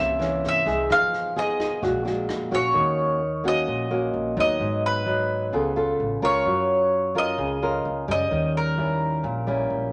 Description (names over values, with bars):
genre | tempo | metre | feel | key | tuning
bossa nova | 130 BPM | 4/4 | straight | Eb minor | A4 = 441 Hz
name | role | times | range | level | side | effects
mandolin | melody | 0.0-9.9 s | Bb4 to F5 | -26 LUFS | equal | none
nylon-string guitar | accompaniment | 0.0-9.9 s | Ab2 to Bb4 | -27 LUFS | equal | none
upright bass | bass | 0.0-9.9 s | Ab1 to G2 | -37 LUFS | equal | none
swinging big-band drum kit | drums | 0.2-2.6 s | kick drum, rim click, snare drum | -38 LUFS | equal | none
room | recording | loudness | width
wet studio ambience, RT60 0.4 s | none | -24 LUFS | mono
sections
0.0-2.8 A section; 2.8-9.9 A section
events
none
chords
0.0 C7b9; 0.9 Fm7b5; 1.8 Bb7b13; 2.8 Ebm7; 4.6 Abm7; 5.5 Dbaug7; 6.5 Gbmaj7; 8.3 Eb7b9